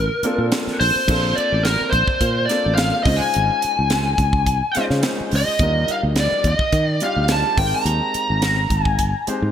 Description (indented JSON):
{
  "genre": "electric jazz fusion",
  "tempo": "106 BPM",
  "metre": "4/4",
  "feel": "straight",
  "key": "Bb major",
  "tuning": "A4 = 440 Hz",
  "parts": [
    { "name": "bluesy overdriven lead guitar", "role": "melody", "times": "0.0-9.4 s", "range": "Bb4 to Bb5", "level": "-20 LUFS", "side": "left 1 dB", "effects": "distortion" },
    { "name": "sustaining fretless electric bass", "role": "bass", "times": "0.0-9.5 s", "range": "G1 to Eb3", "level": "-21 LUFS", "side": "equal", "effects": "none" },
    { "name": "warm baby grand piano", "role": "accompaniment", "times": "0.2-9.5 s", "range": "G3 to C5", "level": "-27 LUFS", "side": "left 1 dB", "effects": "none" },
    { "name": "crisp fusion drum kit", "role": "drums", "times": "0.2-9.4 s", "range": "crash cymbal, hi-hat, kick drum, snare drum", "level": "-23 LUFS", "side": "right 1 dB", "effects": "gated reverb" }
  ],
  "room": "light reverb, studio ambience",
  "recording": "bright 1980s-style digital production",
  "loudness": "-16 LUFS",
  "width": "side -9 dB against mid",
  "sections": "0.0-1.1 A section; 1.1-9.5 A section",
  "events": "none",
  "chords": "0.0 Bbmaj9; 3.1 Dbmaj9; 5.6 Ebmaj9; 7.6 Abmaj9",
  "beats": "0.51 | 1.08 1.64 2.21 2.77 | 3.34 3.91 4.47 5.04 | 5.60 6.17 6.74 7.30 | 7.87 8.43 9.00"
}